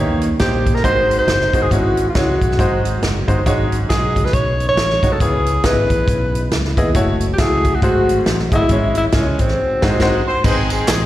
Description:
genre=uptempo gospel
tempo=137 BPM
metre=4/4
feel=swing 60% on 8ths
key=unclear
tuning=A4 = 440 Hz
part: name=bright baby grand piano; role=accompaniment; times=0.0-11.1 s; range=G#2 to E5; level=-20 LUFS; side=equal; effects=slapback echo
part: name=mellow French horn section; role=sustained chords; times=0.0-10.4 s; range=E3 to G#4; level=-28 LUFS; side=equal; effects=none
part: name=fingered electric bass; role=bass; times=0.0-11.1 s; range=F#1 to D#2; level=-21 LUFS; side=equal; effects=none
part: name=natural country drum kit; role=drums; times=0.2-11.0 s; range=crash cymbal, hi-hat, kick drum, ride cymbal, snare drum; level=-19 LUFS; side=equal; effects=none
part: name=breathy tenor saxophone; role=melody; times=0.4-10.3 s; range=B#3 to C#5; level=-18 LUFS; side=equal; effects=slapback echo
part: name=warm horn section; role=melody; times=10.3-11.1 s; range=B#3 to B#4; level=-20 LUFS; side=equal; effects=none
part: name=tambourine and handclaps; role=percussion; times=10.4-11.0 s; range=none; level=-26 LUFS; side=right 2 dB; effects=none
room=studio ambience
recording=live gig heard through the venue's PA, recital hall reverb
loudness=-14 LUFS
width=side -14 dB against mid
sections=0.0-10.4 A section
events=band accent 9.6-10.4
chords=0.0 D#7; 0.8 G#7; 1.7 C#m/G#; 2.6 G#7; 3.5 G#7sus4; 5.2 C#m7; 7.0 F#m7; 7.8 G#7b9; 8.7 C#m/G#; 9.6 G#7; 10.4 G#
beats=0.40 0.84 1.27 | 1.71 2.15 2.58 3.02 | 3.46 3.89 4.33 4.77 | 5.20 5.64 6.08 6.51 | 6.95 7.39 7.83 8.26 | 8.70 9.14 9.57 10.01 | 10.45 10.88

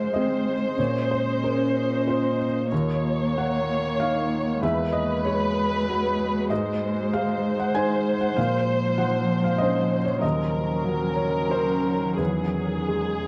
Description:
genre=neoclassical piano and strings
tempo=95 BPM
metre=3/4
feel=rubato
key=unclear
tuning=A4 = 440 Hz
part: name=muted chamber violin section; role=melody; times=0.0-13.3 s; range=G#4 to Db5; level=-30 LUFS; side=equal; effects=none
part: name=muted cello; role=second line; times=0.0-13.3 s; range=F3 to Db4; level=-31 LUFS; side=equal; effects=none
part: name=felt-muted upright piano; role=accompaniment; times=0.0-13.3 s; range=Eb2 to Ab5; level=-28 LUFS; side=equal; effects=none
part: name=deep dark ambient pad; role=sustained chords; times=0.0-13.3 s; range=Eb3 to Eb5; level=-35 LUFS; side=equal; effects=chorus, built-in reverb
room=light reverb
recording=dry, close 1970s-style studio recording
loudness=-24 LUFS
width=mono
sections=0.0-13.3 A section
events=none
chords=0.0 Ab; 0.8 Bbmadd9; 2.7 Ebm7; 4.6 Eadd9; 6.5 Ab; 8.4 Bbmadd9; 10.2 Ebm7; 12.2 Eadd9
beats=0.14 | 0.79 1.43 2.07 | 2.71 3.36 4.00 | 4.62 5.24 5.87 | 6.50 7.12 7.75 | 8.37 8.99 9.61 | 10.23 10.86 11.51 | 12.19 12.89

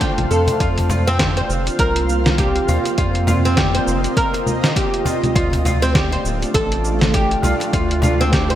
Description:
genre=organic downtempo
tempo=101 BPM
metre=4/4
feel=swing 58% on 16ths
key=F mixolydian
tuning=A4 = 439 Hz
part: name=granular cloud pad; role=sustained chords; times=0.0-8.6 s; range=A3 to F5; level=-22 LUFS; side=right 2 dB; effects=built-in reverb, sidechain pumping, shimmer reverb
part: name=oud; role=arpeggios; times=0.0-8.6 s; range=C4 to C5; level=-21 LUFS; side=equal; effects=digital delay, shimmer reverb
part: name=dusty soul sampler-style drum kit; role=drums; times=0.0-8.6 s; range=cabasa, congas, hi-hat, snare drum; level=-22 LUFS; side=equal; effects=gated reverb
part: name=electronic kick drum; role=drums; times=0.0-8.5 s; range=none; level=-22 LUFS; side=equal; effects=overdrive
part: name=round analog bass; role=bass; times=0.2-8.5 s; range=D1 to F2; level=-20 LUFS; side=equal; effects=sidechain pumping
part: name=cajon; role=percussion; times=0.5-8.2 s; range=none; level=-27 LUFS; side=left 1 dB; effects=none
room=moderate plate reverb, RT60 1.7 s, digital ambience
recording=bright 1980s-style digital production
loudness=-15 LUFS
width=side -12 dB against mid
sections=0.6-8.6 A section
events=none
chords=0.0 Dm; 0.6 Fsus4; 5.4 Dm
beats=0.01 | 0.60 1.20 1.79 2.39 | 2.98 3.58 4.17 4.76 | 5.36 5.95 6.54 7.14 | 7.73 8.33

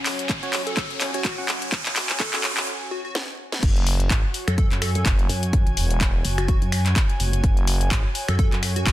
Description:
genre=bass house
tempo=126 BPM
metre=4/4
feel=swing 56% on 16ths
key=F# minor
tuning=A4 = 438 Hz
part: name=deep dark ambient pad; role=sustained chords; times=0.0-2.6 s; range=F#3 to F#5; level=-38 LUFS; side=left 3 dB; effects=chorus, built-in reverb, vintage 12-bit sampler grit, sidechain pumping
part: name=riser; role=sound effects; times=0.0-2.7 s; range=none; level=-31 LUFS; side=equal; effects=none
part: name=airy breathy pad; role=texture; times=0.0-8.9 s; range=F#4 to G#5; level=-34 LUFS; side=right 1 dB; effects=chorus, sidechain pumping
part: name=house drum kit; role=drums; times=0.1-8.9 s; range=crash cymbal, finger snaps, handclaps, hi-hat, snare drum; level=-26 LUFS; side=left 1 dB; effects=none
part: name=electronic kick drum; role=drums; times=0.3-8.9 s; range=none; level=-21 LUFS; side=equal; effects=none
part: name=percussive organ stab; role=stabs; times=0.4-2.5 s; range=C#4 to F#5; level=-33 LUFS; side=right 2 dB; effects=chorus, sidechain pumping, tape echo
part: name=plucky unison lead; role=melody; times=0.7-8.9 s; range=F#4 to A4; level=-32 LUFS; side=equal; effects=phaser, tape echo
part: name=growling FM bass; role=bass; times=3.6-8.9 s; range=E1 to G#1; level=-22 LUFS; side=equal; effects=tube saturation, sidechain pumping
part: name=pulsing pluck wobble bass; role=bass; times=4.5-8.8 s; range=F#1 to F#2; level=-22 LUFS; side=equal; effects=chorus, tube saturation, sidechain pumping
room=little or no reverb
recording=dense, heavily limited modern master, high-pass filter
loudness=-20 LUFS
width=side -14 dB against mid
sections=0.0-3.6 A section; 3.6-8.9 B section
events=build-up 0.0-3.6; drum fill 0.0-2.7, 3.2-3.6; riser 0.0-2.7; break 2.7-3.6; drop 3.6-8.9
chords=0.0 F#5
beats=0.29 0.77 1.25 | 1.72 2.20 2.68 3.15 | 3.63 4.10 4.58 5.06 | 5.53 6.01 6.49 6.96 | 7.44 7.91 8.39 8.87

